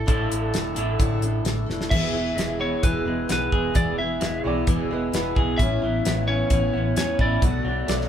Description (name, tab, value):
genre	folk rock and heartland rock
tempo	131 BPM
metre	4/4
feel	straight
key	unclear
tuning	A4 = 439 Hz
part	lightly driven lead guitar	melody	0.0-8.1 s	A4 to E5	-28 LUFS	equal	none
part	picked steel-string acoustic guitar	accompaniment	0.0-8.1 s	E2 to A4	-27 LUFS	left 1 dB	none
part	electric guitar through a small old amp	riff	0.0-8.1 s	E2 to A4	-29 LUFS	right 1 dB	none
part	hollow-body short-scale fingered electric bass	bass	0.0-8.1 s	E1 to E2	-28 LUFS	equal	none
part	damped 70s drum kit	drums	0.1-8.1 s	crash cymbal, hi-hat, kick drum, snare drum	-24 LUFS	equal	none
part	warm upright piano	second line	4.4-8.1 s	B4 to D5	-31 LUFS	right 4 dB	none
room	wet small room reverb, RT60 0.5 s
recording	band playing live in one room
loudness	-20 LUFS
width	side -9 dB against mid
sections	0.0-1.9 A section; 1.9-8.1 B section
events	drum fill 1.7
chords	0.0 Asus4; 1.9 E; 5.6 Aadd9; 7.4 Bm7